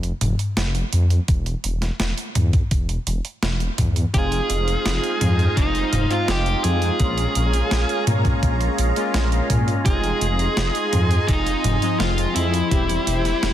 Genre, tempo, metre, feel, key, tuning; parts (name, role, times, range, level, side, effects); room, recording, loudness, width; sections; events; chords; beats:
synthwave; 84 BPM; 4/4; straight; F minor; A4 = 440 Hz
dark detuned saw bass; bass; 0.0-13.5 s; E1 to Bb2; -22 LUFS; equal
clean 12-bit digital drum machine; drums; 0.0-13.5 s; hi-hat, snare drum, toms; -25 LUFS; equal
electronic kick drum; drums; 1.3-12.9 s; -21 LUFS; equal
dark smooth lead guitar; melody; 4.1-13.5 s; Eb4 to Ab4; -24 LUFS; right 1 dB; overdrive, ping-pong delay
phased analog pad; sustained chords; 4.1-13.5 s; F4 to C6; -28 LUFS; right 1 dB; phaser, chorus, sidechain pumping
analog synth brass; stabs; 4.1-13.5 s; F3 to Eb5; -27 LUFS; left 1 dB; chorus, digital delay
light reverb; dense, heavily limited modern master; -18 LUFS; side -11 dB against mid
0.0-13.5 A section
0.0 N.C.; 4.1 Fm7; 7.0 Bbm7; 9.9 Fm7; 12.7 C/E
0.57 | 1.28 2.00 2.71 3.43 | 4.14 4.86 5.57 6.29 | 7.00 7.71 8.43 9.14 | 9.86 10.57 11.29 12.00 | 12.71 13.43